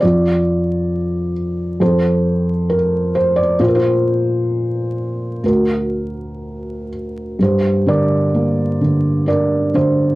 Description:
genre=classical, lyrical solo piano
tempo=59-69 BPM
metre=4/4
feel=rubato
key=unclear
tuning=A4 = 440 Hz
part: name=felt-muted upright piano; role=solo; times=0.0-10.2 s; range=D2 to D5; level=-15 LUFS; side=equal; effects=cassette tape
room=moderate small room reverb, RT60 0.5 s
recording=home recording on cassette, vinyl crackle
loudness=-14 LUFS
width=side -19 dB against mid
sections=0.0-7.4 A section; 7.4-10.2 B section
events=none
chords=0.0 N.C.; 1.8 F; 3.6 Bbsus2; 5.4 D; 7.4 Gm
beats=| 0.03 0.91 1.81 2.70 | 3.60 4.50 5.43 6.42 | 7.39 8.34 9.28

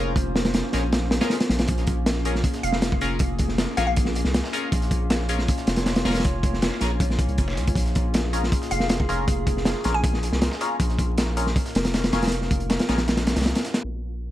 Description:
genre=drum and bass, jungle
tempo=158 BPM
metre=4/4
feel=straight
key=Bb minor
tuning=A4 = 441 Hz
part: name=warbly tape-like pad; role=sustained chords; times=0.0-14.3 s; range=Bb3 to Db5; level=-31 LUFS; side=equal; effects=chorus, built-in reverb, vintage 12-bit sampler grit
part: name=band-passed chord stab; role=stabs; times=0.0-13.0 s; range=Db4 to Bb4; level=-32 LUFS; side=left 2 dB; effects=phaser, wide subtle chorus, dub echo
part: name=soft dub sub bass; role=bass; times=0.0-14.3 s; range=F1 to Db2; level=-26 LUFS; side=equal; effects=tube saturation
part: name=crunchy breakbeat drum kit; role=drums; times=0.2-13.8 s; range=hi-hat, kick drum, snare drum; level=-23 LUFS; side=equal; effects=none
part: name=dusty soul sampler-style drum kit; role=drums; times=1.7-13.8 s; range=hi-hat, snare drum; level=-37 LUFS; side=right 1 dB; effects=high-pass filter on hats, high-pass filter on snare, high-pass filter on room
part: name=glassy wavetable pluck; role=melody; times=2.6-3.9, 8.7-10.3 s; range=F5 to Ab5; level=-30 LUFS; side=left 1 dB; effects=chorus, dub echo
room=small room reverb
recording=vinyl crackle, low-pass filter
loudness=-20 LUFS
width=side -14 dB against mid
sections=0.0-13.8 A section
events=drop 0.0-13.8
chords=0.0 Bbm7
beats=| 0.17 0.55 0.93 1.30 | 1.69 2.06 2.44 2.82 | 3.20 3.58 3.96 4.34 | 4.72 5.10 5.48 5.86 | 6.24 6.62 7.00 7.38 | 7.76 8.14 8.52 8.90 | 9.28 9.66 10.04 10.42 | 10.80 11.18 11.56 11.94 | 12.32 12.70 13.08 13.46 | 13.84 14.22

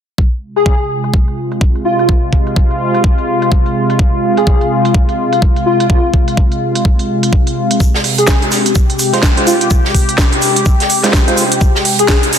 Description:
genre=bass house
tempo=126 BPM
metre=4/4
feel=swing 60% on 16ths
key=F minor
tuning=A4 = 437 Hz
part: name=sweeping resonant pad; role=sustained chords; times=0.2-12.4 s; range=C3 to G4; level=-16 LUFS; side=left 1 dB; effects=chorus, sidechain pumping
part: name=electronic kick drum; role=drums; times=0.2-12.2 s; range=none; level=-12 LUFS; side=equal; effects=none
part: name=airy dreamy lead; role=melody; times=0.6-12.2 s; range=F4 to Ab4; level=-16 LUFS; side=left 1 dB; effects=chorus, ping-pong delay
part: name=garage drum kit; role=drums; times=0.6-12.4 s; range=hi-hat, snare drum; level=-16 LUFS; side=right 2 dB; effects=low-pass filter on hats, low-pass filter on snare, low-pass filter on room
part: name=warm soul drum kit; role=drums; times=7.8-12.4 s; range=hi-hat, shaker, snare drum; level=-20 LUFS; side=right 2 dB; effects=sidechain pumping on hats, high-pass filter on hats, high-pass filter on snare, sidechain pumping on perc, high-pass filter on perc, high-pass filter on room
part: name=percussive organ stab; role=stabs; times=9.1-11.4 s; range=Ab3 to C5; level=-18 LUFS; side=right 2 dB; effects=chorus, sidechain pumping, ping-pong delay
room=light reverb, small room reverb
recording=dense, heavily limited modern master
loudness=-10 LUFS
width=side -8 dB against mid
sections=0.2-12.4 A section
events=filter sweep on drum 0.2-12.4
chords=0.2 Fm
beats=| 0.18 0.66 1.14 1.61 | 2.09 2.56 3.04 3.52 | 3.99 4.47 4.95 5.42 | 5.90 6.37 6.85 7.33 | 7.80 8.28 8.76 9.23 | 9.71 10.18 10.66 11.14 | 11.61 12.09

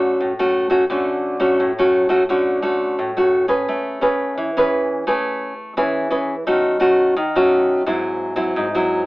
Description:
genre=samba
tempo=86 BPM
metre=4/4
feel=straight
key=D major, A major from 3.7 s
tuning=A4 = 440 Hz
part: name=nylon-string guitar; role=solo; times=0.0-9.1 s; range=G#2 to B4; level=-16 LUFS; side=equal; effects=none
room=wet small room reverb, RT60 0.5 s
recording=band playing live in one room, telephone sound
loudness=-16 LUFS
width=side -21 dB against mid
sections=0.0-3.7 A section; 3.7-9.1 B section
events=none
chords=0.0 Dmaj7; 3.7 Amaj9; 6.5 D#m7b5; 7.9 G#7b13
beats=0.21 | 0.90 1.60 2.29 2.99 | 3.68 4.38 5.08 5.77 | 6.47 7.17 7.86 8.56

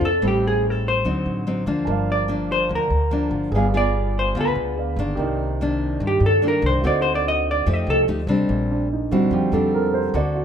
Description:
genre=bossa nova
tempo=145 BPM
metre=4/4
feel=straight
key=G minor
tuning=A4 = 439 Hz
part: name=vintage hollow-body jazz guitar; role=melody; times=0.0-8.0 s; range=G4 to Eb5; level=-22 LUFS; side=equal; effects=none
part: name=nylon-string guitar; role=accompaniment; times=0.0-10.4 s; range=G2 to A4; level=-23 LUFS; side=left 2 dB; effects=none
part: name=upright bass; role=bass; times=0.0-10.4 s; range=G1 to G2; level=-25 LUFS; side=equal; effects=none
part: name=dark grand piano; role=accompaniment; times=1.9-10.4 s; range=D3 to A5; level=-26 LUFS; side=right 4 dB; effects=none
room=light reverb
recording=minimal, uncompressed stereo recording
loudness=-18 LUFS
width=side -8 dB against mid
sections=0.0-8.5 A section; 8.5-10.4 A section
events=hollow-body jazz guitar solo 0.0-8.5; grand piano solo 8.5-10.4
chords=0.2 Am7b5; 1.1 D7b9; 1.9 Gm7; 3.5 G7b9; 5.2 Cm9; 6.8 D7b9; 7.7 F9; 8.5 Bb69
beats=| 0.23 0.64 1.05 1.46 | 1.88 2.29 2.70 3.12 | 3.53 3.94 4.35 4.77 | 5.18 5.59 6.01 6.42 | 6.83 7.25 7.66 8.07 | 8.49 8.90 9.31 9.73 | 10.14

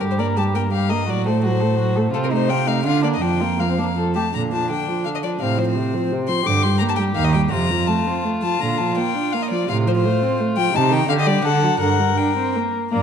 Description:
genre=quick classical-period movement for string quartet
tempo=167 BPM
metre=3/4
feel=rubato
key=Bb major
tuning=A4 = 440 Hz
part: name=rich violin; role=melody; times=0.0-13.0 s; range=A4 to D6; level=-23 LUFS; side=left 9 dB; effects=none
part: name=dark violin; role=second line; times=0.0-13.0 s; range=Bb3 to Bb4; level=-25 LUFS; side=left 3 dB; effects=none
part: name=warm viola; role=accompaniment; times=0.0-13.0 s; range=C3 to D5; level=-22 LUFS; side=right 3 dB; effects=none
part: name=rich cello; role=bass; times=0.0-13.0 s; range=Eb2 to D3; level=-22 LUFS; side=right 4 dB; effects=none
room=moderate recital hall reverb, RT60 1.4 s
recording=dark, warm production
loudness=-17 LUFS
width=side -7 dB against mid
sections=0.0-4.3 A section; 4.3-12.9 B section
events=none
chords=0.0 Gm; 1.1 F#dim/A; 2.1 F7/C; 2.9 Bb/D; 3.2 Bb/F; 4.0 F; 4.3 Bb; 5.4 F/A; 6.5 Gm; 7.2 Ebadd9; 7.5 F; 8.6 Bb; 9.7 F/A; 10.7 Adim/C; 11.1 G5/D; 11.5 D; 11.8 Gm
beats=| 0.01 0.36 0.72 | 1.08 1.44 1.79 | 2.14 2.49 2.85 | 3.22 3.59 3.97 | 4.34 4.70 5.05 | 5.41 5.76 6.11 | 6.46 6.81 7.17 | 7.53 7.89 8.25 | 8.62 8.98 9.34 | 9.70 10.05 10.40 | 10.74 11.09 11.45 | 11.82 12.19 12.56 | 12.94

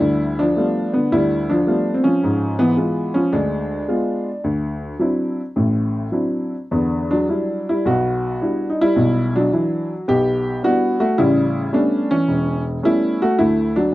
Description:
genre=solo jazz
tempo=108 BPM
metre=4/4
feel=swing 67% on 8ths, rubato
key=unclear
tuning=A4 = 440 Hz
part: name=warm upright piano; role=solo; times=0.0-13.9 s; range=E1 to G4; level=-16 LUFS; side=equal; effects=none
room=light reverb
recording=dry, close 1970s-style studio recording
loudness=-17 LUFS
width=side -16 dB against mid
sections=0.0-13.9 A section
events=none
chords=0.0 G9; 2.2 G#dim7; 4.4 D9; 6.7 Em7; 11.2 A9; 13.4 Dadd9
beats=| 0.01 0.57 1.12 1.68 | 2.23 2.78 3.33 3.89 | 4.44 5.00 5.56 6.13 | 6.71 7.29 7.87 8.42 | 8.98 9.53 10.08 10.63 | 11.18 11.72 12.28 12.83 | 13.38

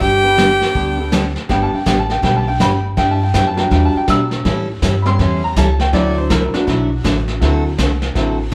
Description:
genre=country, western swing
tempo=162 BPM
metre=4/4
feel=swing 63% on 8ths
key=G major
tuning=A4 = 436 Hz
part: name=clear fiddle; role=melody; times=0.0-1.1 s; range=G5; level=-18 LUFS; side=equal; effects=none
part: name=breathy clarinet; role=second line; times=0.0-1.1 s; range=G4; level=-21 LUFS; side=equal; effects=none
part: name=picked steel-string acoustic guitar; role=accompaniment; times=0.0-8.5 s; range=D3 to B4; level=-22 LUFS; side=equal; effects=none
part: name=upright bass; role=bass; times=0.0-8.5 s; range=G1 to B2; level=-21 LUFS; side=equal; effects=none
part: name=vintage brush drum kit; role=drums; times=0.0-8.5 s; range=brushed snare drum, hi-hat, kick drum, snare drum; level=-25 LUFS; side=equal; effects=none
part: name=bright upright piano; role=accompaniment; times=0.2-8.4 s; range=F#3 to E6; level=-22 LUFS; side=equal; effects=none
room=moderate large studio reverb, RT60 1.1 s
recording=band playing live in one room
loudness=-16 LUFS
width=mono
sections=0.0-1.5 A section; 1.5-8.5 B section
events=upright piano solo 1.5-8.5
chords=0.0 G; 3.0 Em7; 4.5 A7; 5.9 Dadd9; 7.4 D7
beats=| 0.01 0.38 0.75 1.12 | 1.49 1.86 2.23 2.60 | 2.97 3.34 3.71 4.08 | 4.45 4.82 5.19 5.56 | 5.93 6.30 6.67 7.04 | 7.41 7.78 8.15 8.53

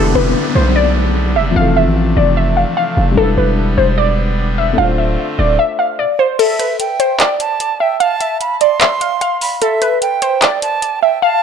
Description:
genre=hip hop, trap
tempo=149 BPM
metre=4/4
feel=half-time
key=E phrygian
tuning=A4 = 440 Hz
part: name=warbly dusty pluck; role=melody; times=0.0-11.4 s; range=A4 to F5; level=-15 LUFS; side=equal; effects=chorus, phaser, low-pass filter, digital delay
part: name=felt-muted upright piano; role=accompaniment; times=0.0-6.0 s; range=D3 to C5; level=-19 LUFS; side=left 4 dB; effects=low-pass filter
part: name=pipe organ, trumpet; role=sustained chords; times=0.0-5.6 s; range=C3 to F4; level=-24 LUFS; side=left 1 dB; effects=none
part: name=distorted 808-style bass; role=bass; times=0.0-5.6 s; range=D1 to B1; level=-15 LUFS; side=equal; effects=distortion
part: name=downlifter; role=sound effects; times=0.0-3.2 s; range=none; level=-23 LUFS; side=equal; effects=none
part: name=silver concert flute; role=second line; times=6.4-11.4 s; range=E5 to C6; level=-18 LUFS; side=right 5 dB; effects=digital delay
part: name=trap drum kit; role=drums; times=6.4-10.9 s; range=crash cymbal, handclaps, hi-hat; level=-16 LUFS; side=right 1 dB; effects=none
room=light reverb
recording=none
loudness=-12 LUFS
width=side -7 dB against mid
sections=0.0-6.4 A section; 6.4-11.4 B section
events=kick muted 6.4-11.4; hi-hats muted 11.2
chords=0.0 Em7; 1.6 Fmaj7; 3.2 Em7; 4.8 Dm7; 6.4 N.C.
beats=0.35 0.76 1.16 | 1.56 1.96 2.37 2.77 | 3.17 3.58 3.98 4.38 | 4.78 5.18 5.59 5.99 | 6.39 6.80 7.20 7.60 | 8.00 8.41 8.81 9.21 | 9.62 10.02 10.42 10.82 | 11.23

